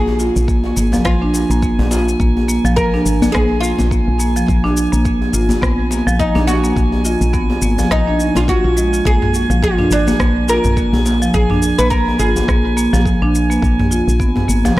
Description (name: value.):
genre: organic downtempo.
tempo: 105 BPM.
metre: 4/4.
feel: swing 57% on 16ths.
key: unclear.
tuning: A4 = 443 Hz.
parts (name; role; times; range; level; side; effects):
oud; melody; 0.0-13.0 s; D4 to Cb5; -21 LUFS; left 1 dB; tape echo.
marimba with soft mallets; arpeggios; 0.0-14.8 s; F3 to F4; -17 LUFS; right 1 dB; analog delay.
woody FM bass; bass; 0.0-14.8 s; Ab1 to Bb1; -18 LUFS; equal; sidechain pumping.
drifting glass-harmonics texture; texture; 0.3-14.8 s; Ab5; -26 LUFS; right 4 dB; chorus, built-in reverb.
djembe; percussion; 0.1-14.7 s; none; -24 LUFS; left 2 dB; none.
afro-pop drum kit; drums; 0.2-14.8 s; rim click, shaker, toms; -24 LUFS; equal; none.
electronic kick drum; drums; 0.5-14.8 s; none; -19 LUFS; equal; none.
room: light reverb.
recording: dry, gritty hardware recording, transformer saturation.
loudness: -12 LUFS.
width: side -16 dB against mid.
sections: 0.0-14.8 A section.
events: none.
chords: 0.0 Bb7(no3); 4.5 N.C.; 9.1 Bb7; 13.6 N.C..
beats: 0.48 1.05 1.62 | 2.20 2.77 3.34 3.91 | 4.48 5.05 5.62 6.20 | 6.77 7.34 7.91 8.48 | 9.05 9.62 10.20 10.77 | 11.34 11.91 12.48 13.05 | 13.62 14.20 14.77.